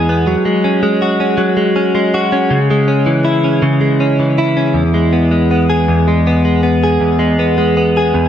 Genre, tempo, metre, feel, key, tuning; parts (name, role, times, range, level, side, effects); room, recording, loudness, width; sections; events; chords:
pop; 54 BPM (dotted quarters); 6/8; straight; A4 = 440 Hz
direct-recorded clean electric guitar; solo; 0.0-8.3 s; E2 to G#4; -11 LUFS; equal; analog chorus, ping-pong delay
light reverb, digital ambience; dark, warm production; -11 LUFS; side -9 dB against mid
0.0-4.8 A section; 4.8-8.3 B section
0.3 F#sus2; 2.5 C#m; 4.8 E